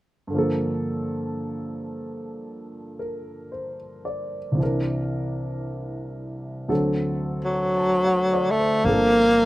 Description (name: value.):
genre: jazz ballad.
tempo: 56 BPM.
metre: 4/4.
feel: swing 66% on 8ths.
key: G dorian.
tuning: A4 = 439 Hz.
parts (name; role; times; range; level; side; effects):
warm concert grand piano; accompaniment; 0.3-9.5 s; C2 to A5; -26 LUFS; equal; none.
breathy tenor saxophone; melody; 7.4-9.5 s; F#3 to Bb3; -18 LUFS; equal; none.
upright bass; bass; 8.8-9.5 s; G1; -27 LUFS; equal; none.
brushed snare drum; drums; 8.8-9.5 s; none; -39 LUFS; equal; none.
room: little or no reverb.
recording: recorded outdoors, with no room sound.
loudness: -22 LUFS.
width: side -18 dB against mid.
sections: 0.3-8.9 A section.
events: none.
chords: 0.3 Gm7; 4.6 C7; 6.7 D7; 8.9 Gm11.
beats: | 0.31 1.38 2.45 3.52 | 4.58 5.64 6.70 7.77 | 8.85.